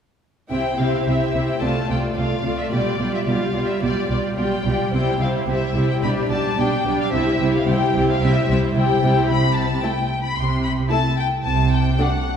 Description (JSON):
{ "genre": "quick classical-period movement for symphony orchestra", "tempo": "110 BPM", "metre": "4/4", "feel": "rubato", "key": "C major", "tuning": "A4 = 440 Hz", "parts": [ { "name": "rich chamber violin section", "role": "melody", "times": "0.5-12.4 s", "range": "D5 to C6", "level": "-25 LUFS", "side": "left 4 dB", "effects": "none" }, { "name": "warm chamber violin section", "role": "second line", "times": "0.5-12.1 s", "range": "E4 to E5", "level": "-26 LUFS", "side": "left 3 dB", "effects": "none" }, { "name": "rich chamber viola section", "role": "accompaniment", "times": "0.5-12.1 s", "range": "G3 to F4", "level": "-23 LUFS", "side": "right 1 dB", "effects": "none" }, { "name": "clear chamber double bass section", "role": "bass", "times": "0.5-11.9 s", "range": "B1 to C2", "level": "-24 LUFS", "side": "right 1 dB", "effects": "none" }, { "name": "clear studio cello section", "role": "bass", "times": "0.5-11.9 s", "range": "B2 to C3", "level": "-25 LUFS", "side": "right 1 dB", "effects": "none" } ], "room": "wet concert hall reverb, RT60 2.4 s", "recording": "heard from further back in the room", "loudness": "-18 LUFS", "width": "side -8 dB against mid", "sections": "0.5-12.4 A section", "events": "none", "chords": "0.5 C; 1.6 Dm7/C; 2.7 G7/B; 4.9 C; 6.0 G/B; 7.1 C; 9.3 Am/C; 11.4 D7/C (rootless)" }